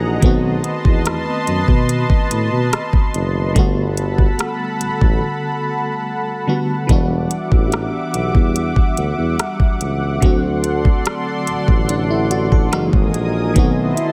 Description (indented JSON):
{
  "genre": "contemporary R&B",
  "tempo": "72 BPM",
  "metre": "4/4",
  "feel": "straight",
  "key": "E minor",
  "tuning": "A4 = 439 Hz",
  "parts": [
    { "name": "FM electric piano", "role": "accompaniment", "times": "0.0-14.1 s", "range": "D3 to A4", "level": "-24 LUFS", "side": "equal", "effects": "chorus, tremolo" },
    { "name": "lush unison pad", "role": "sustained chords", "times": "0.0-14.1 s", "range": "G3 to D#6", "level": "-26 LUFS", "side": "equal", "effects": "chorus" },
    { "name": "mellow tuba", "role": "bass", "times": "0.0-13.9 s", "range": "E1 to B2", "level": "-22 LUFS", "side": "equal", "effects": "none" },
    { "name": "smooth R&B drum kit", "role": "drums", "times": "0.2-14.1 s", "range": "hi-hat, kick drum, rim click", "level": "-17 LUFS", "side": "equal", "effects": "none" },
    { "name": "swell", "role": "sound effects", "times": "13.9-14.1 s", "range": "none", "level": "-25 LUFS", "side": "equal", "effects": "none" }
  ],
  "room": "little or no reverb",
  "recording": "none",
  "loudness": "-17 LUFS",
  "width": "mono",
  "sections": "0.0-14.1 A section",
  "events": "break 5.2-6.9; swell 13.9",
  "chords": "0.2 B7b9; 3.6 Gmaj9; 6.9 Em9; 10.2 D7; 12.7 F#13; 13.6 B7b9"
}